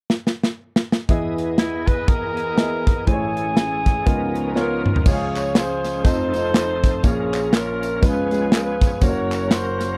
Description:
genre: uptempo gospel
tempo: 121 BPM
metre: 4/4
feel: swing 59% on 8ths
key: unclear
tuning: A4 = 440 Hz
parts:
  - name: modern studio drum kit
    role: drums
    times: 0.1-9.9 s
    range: crash cymbal, hi-hat, kick drum, snare drum, toms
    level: -21 LUFS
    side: equal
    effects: none
  - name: warm grand piano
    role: accompaniment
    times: 1.1-10.0 s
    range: F1 to F5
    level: -27 LUFS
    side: equal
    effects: none
  - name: bright tonewheel organ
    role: sustained chords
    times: 1.1-10.0 s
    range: E3 to D#5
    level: -32 LUFS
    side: equal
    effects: slow rotary speaker, overdrive, chorus vibrato
  - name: warm studio string section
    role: sustained chords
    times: 1.1-5.0 s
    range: A3 to D#5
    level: -37 LUFS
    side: equal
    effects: none
  - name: breathy tenor saxophone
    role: melody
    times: 1.6-4.8 s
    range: E4 to B4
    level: -27 LUFS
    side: equal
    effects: none
  - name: warm saxophone section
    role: melody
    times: 4.6-10.0 s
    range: Db4 to Db5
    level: -26 LUFS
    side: equal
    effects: none
  - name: tambourine and handclaps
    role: percussion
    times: 5.1-9.9 s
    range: none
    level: -36 LUFS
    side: equal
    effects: none
room: little or no reverb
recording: dry, close 1970s-style studio recording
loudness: -20 LUFS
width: mono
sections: 0.0-1.1 A section; 1.1-5.1 B section; 5.1-10.0 C section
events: drum fill 0.1-1.1, 4.6-5.1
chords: 0.0 N.C.; 1.1 Emaj7; 3.1 Amaj7; 4.1 Db13; 5.1 Db; 6.0 F7; 7.0 Bbm; 8.0 Db7; 9.0 Gb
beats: 0.10 0.59 | 1.09 1.59 2.08 2.58 | 3.07 3.57 4.07 4.56 | 5.05 5.55 6.05 6.54 | 7.04 7.53 8.03 8.52 | 9.02 9.52

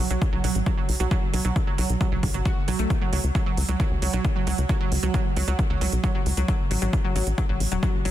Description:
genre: uplifting trance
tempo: 134 BPM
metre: 4/4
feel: straight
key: unclear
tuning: A4 = 441 Hz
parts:
  - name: analog pluck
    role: arpeggios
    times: 0.0-8.1 s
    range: F#3 to F#4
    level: -28 LUFS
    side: right 3 dB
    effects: chorus, sidechain pumping, tape echo
  - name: tight sequencer bass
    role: bass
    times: 0.0-8.1 s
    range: E1 to C#2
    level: -25 LUFS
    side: left 1 dB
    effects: sidechain pumping
  - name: electronic hi-hat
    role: drums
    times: 0.1-8.1 s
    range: none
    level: -34 LUFS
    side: right 4 dB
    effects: overdrive
  - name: electronic kick drum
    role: drums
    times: 0.2-7.9 s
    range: none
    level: -24 LUFS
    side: left 1 dB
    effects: overdrive
room: digital ambience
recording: dense, heavily limited modern master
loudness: -21 LUFS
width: side -12 dB against mid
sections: 0.0-8.1 A section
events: none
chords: 0.0 B5; 2.9 C#sus4; 6.5 A5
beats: 0.22 0.66 | 1.11 1.56 2.01 2.46 | 2.90 3.35 3.80 4.25 | 4.69 5.14 5.59 6.04 | 6.49 6.93 7.38 7.83

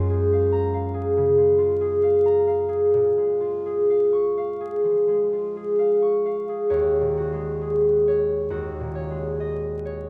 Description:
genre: classical, solo harp piece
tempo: 61-71 BPM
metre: 4/4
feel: rubato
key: Eb minor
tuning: A4 = 440 Hz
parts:
  - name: concert harp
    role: solo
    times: 0.0-10.1 s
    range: Eb2 to Db6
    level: -22 LUFS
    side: equal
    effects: none
room: wet recital hall reverb, RT60 1.5 s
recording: heard from further back in the room, vinyl crackle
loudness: -22 LUFS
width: mono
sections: 0.0-6.7 A section; 6.7-10.1 B section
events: none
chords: 0.0 Gbmaj9; 2.9 Bbm7; 6.7 Ebm11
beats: 0.31 1.16 2.03 | 2.94 3.92 4.87 5.79 | 6.70 7.62 8.51 9.41

